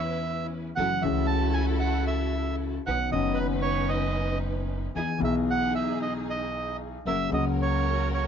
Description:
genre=tango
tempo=115 BPM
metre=4/4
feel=rubato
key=E major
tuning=A4 = 440 Hz
part: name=bandoneon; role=melody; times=0.0-8.2 s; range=B4 to A5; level=-30 LUFS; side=right 5 dB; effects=none
part: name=warm concert grand piano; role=accompaniment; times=0.0-8.3 s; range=F#1 to G#4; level=-29 LUFS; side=left 6 dB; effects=none
part: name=dark symphonic string section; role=stabs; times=0.0-8.3 s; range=C#4 to B4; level=-35 LUFS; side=right 1 dB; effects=none
part: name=upright bass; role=bass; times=0.0-8.3 s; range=F#1 to E2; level=-31 LUFS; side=right 2 dB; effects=none
room=moderate club ambience, RT60 0.5 s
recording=nothing above 7.5 kHz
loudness=-25 LUFS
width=side -8 dB against mid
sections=0.0-8.3 A section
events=none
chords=0.0 C#m7/E; 0.8 F#m7; 2.9 Badd9; 5.0 Emaj7; 7.1 F#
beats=0.25 | 0.77 1.29 1.81 2.34 | 2.86 3.38 3.90 4.43 | 4.96 5.48 6.00 6.53 | 7.05 7.58 8.10

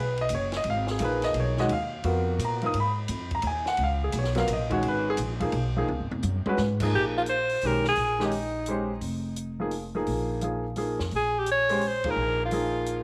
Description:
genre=modal jazz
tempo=172 BPM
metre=3/4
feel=swing 65% on 8ths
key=Bb dorian from 6.9 s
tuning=A4 = 441 Hz
part: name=warm concert grand piano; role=accompaniment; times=0.0-13.0 s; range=D#3 to D#6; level=-30 LUFS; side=equal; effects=none
part: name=upright bass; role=bass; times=0.0-13.0 s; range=E#1 to A#2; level=-33 LUFS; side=equal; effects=none
part: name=compact cocktail drum kit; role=drums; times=0.2-13.0 s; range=crash cymbal, hi-hat, kick drum, ride cymbal, snare drum, toms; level=-40 LUFS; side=equal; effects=none
part: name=breathy alto saxophone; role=melody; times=7.0-8.9, 11.2-13.0 s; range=Eb4 to Db5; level=-28 LUFS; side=equal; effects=tape echo
room=light reverb, studio ambience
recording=none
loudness=-27 LUFS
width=mono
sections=0.0-6.9 A section; 6.9-13.0 B section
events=drum fill 5.9-6.6; band accent 12.0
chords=0.0 G#m69; 2.7 C#; 6.9 Bb7sus4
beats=0.31 | 0.66 1.01 1.35 | 1.70 2.05 2.40 | 2.75 3.10 3.44 | 3.79 4.14 4.49 | 4.84 5.18 5.53 | 5.88 6.23 6.58 | 6.93 7.28 7.62 | 7.97 8.32 8.67 | 9.02 9.37 9.72 | 10.07 10.42 10.77 | 11.12 11.47 11.82 | 12.17 12.52 12.86

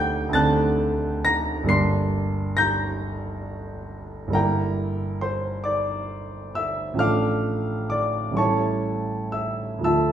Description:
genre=classical, romantic nocturne for solo piano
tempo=38-46 BPM (dotted quarters)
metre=12/8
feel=rubato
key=D minor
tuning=A4 = 439 Hz
part: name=clear concert grand piano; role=solo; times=0.0-10.1 s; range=G1 to C7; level=-22 LUFS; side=right 1 dB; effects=none
room=wet large studio reverb, RT60 1.4 s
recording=heard from further back in the room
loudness=-21 LUFS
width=side -10 dB against mid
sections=0.0-10.1 A section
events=none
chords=0.0 D7; 1.7 Gm; 4.3 Edim/G; 7.0 Dm/A; 8.4 A7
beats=0.34 1.69 3.02 | 4.34 5.67 7.01 8.37 | 9.85

